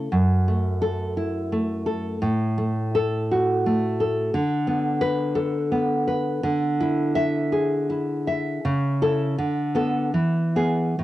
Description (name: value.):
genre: romantic piece for solo classical guitar.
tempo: 68-90 BPM.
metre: 3/4.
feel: rubato.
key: unclear.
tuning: A4 = 441 Hz.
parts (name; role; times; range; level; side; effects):
nylon-string guitar; solo; 0.0-11.0 s; F#2 to E5; -21 LUFS; equal; cassette tape.
room: moderate spring reverb, RT60 1.3 s.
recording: home recording on cassette.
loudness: -21 LUFS.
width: side -15 dB against mid.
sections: 0.0-11.0 A section.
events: none.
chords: 0.1 F#m7; 2.2 F#m/A; 4.3 Bm7/D; 6.4 E7/D; 8.6 A/C#; 9.4 Bm7/D; 10.1 E.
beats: | 0.11 0.81 1.51 | 2.21 2.93 3.65 | 4.33 5.01 5.71 | 6.43 7.15 7.88 | 8.63 9.37 10.14 | 10.98.